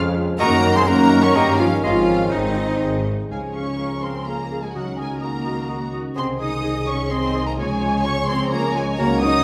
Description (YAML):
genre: classical, dramatic, fast romantic movement for symphony orchestra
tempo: 127 BPM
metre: 3/4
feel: straight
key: Db major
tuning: A4 = 440 Hz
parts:
  - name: mellow French horn section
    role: sustained chords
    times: 0.0-9.4 s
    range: Gb3 to Ab4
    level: -29 LUFS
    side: equal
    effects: none
  - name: warm trombone section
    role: sustained chords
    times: 0.0-9.4 s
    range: Eb3 to Eb4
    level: -32 LUFS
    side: equal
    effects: none
  - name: concert harp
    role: arpeggios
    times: 0.0-9.4 s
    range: F2 to Db5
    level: -29 LUFS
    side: equal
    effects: none
  - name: clear symphonic double bass section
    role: bass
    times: 0.0-9.4 s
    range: Ab1 to G2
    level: -28 LUFS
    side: equal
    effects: none
  - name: warm symphonic violin section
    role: melody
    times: 0.4-9.4 s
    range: Eb5 to Eb6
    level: -32 LUFS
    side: equal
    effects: none
  - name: mellow silver concert flute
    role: second line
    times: 0.4-9.4 s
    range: Eb5 to Eb6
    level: -30 LUFS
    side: equal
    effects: none
  - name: rich studio violin section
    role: second line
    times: 0.4-9.4 s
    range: Gb4 to Db6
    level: -36 LUFS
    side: equal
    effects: none
  - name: warm clarinet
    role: second line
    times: 0.4-9.2 s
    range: F4 to Eb5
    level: -35 LUFS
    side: equal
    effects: none
  - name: warm oboe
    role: second line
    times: 0.4-9.2 s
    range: Bb4 to Db6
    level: -35 LUFS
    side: equal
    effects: none
  - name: rich chamber viola section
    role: accompaniment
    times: 0.4-9.4 s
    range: Eb4 to Eb5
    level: -29 LUFS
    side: equal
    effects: none
  - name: dark trumpet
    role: stabs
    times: 0.4-9.4 s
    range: C4 to Bb4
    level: -31 LUFS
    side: equal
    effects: none
  - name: rich symphonic cello section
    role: bass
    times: 0.4-9.4 s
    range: Eb3 to Eb4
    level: -30 LUFS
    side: equal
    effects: none
room: wet recital hall reverb, RT60 1.6 s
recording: none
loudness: -20 LUFS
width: mono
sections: 0.0-3.3 A section; 3.3-9.4 B section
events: none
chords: 0.4 Ebm7/Gb; 1.4 Eb7/G; 1.8 Ab; 3.3 Db; 4.8 Ebm7/Db; 6.2 Ab/C; 7.6 Db